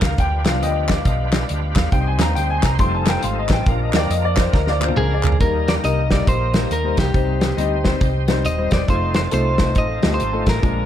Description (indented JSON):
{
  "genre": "uptempo gospel",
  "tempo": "138 BPM",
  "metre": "4/4",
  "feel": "swing 62% on 8ths",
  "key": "Eb major",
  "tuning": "A4 = 440 Hz",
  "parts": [
    { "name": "warm upright piano", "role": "accompaniment", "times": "0.0-10.9 s", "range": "Bb2 to C6", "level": "-23 LUFS", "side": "left 4 dB", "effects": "analog delay" },
    { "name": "bright tonewheel organ", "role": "sustained chords", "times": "0.0-10.9 s", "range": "Eb3 to C5", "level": "-28 LUFS", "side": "right 2 dB", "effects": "slow rotary speaker, overdrive, chorus vibrato" },
    { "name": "hollow-body short-scale fingered electric bass", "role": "bass", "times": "0.0-10.9 s", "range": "Eb1 to F2", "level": "-22 LUFS", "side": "equal", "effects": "none" },
    { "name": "natural country drum kit", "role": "drums", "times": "0.0-10.8 s", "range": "hi-hat, kick drum, snare drum, toms", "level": "-20 LUFS", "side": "equal", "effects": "analog delay" },
    { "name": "group handclap", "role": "percussion", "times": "0.0-5.3 s", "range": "none", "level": "-29 LUFS", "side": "left 1 dB", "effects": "none" },
    { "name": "clean electric guitar", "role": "melody", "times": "5.0-10.9 s", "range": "G4 to Eb5", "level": "-24 LUFS", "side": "equal", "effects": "spring reverb, analog delay" }
  ],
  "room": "light reverb",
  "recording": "echo-heavy mix",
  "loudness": "-16 LUFS",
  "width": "side -10 dB against mid",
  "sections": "0.0-5.4 A section; 5.4-10.9 B section",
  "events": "upright piano solo 0.0-5.4; drum fill 4.5-5.4",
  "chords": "0.2 G7; 1.9 Cm; 2.8 F7; 3.7 Bb; 5.4 Eb; 7.1 Cm; 8.9 F7",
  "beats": "| 0.19 0.62 1.06 1.49 | 1.93 2.36 2.80 3.23 | 3.67 4.10 4.54 4.97 | 5.41 5.84 6.28 6.71 | 7.15 7.58 8.02 8.46 | 8.89 9.33 9.77 10.20 | 10.64"
}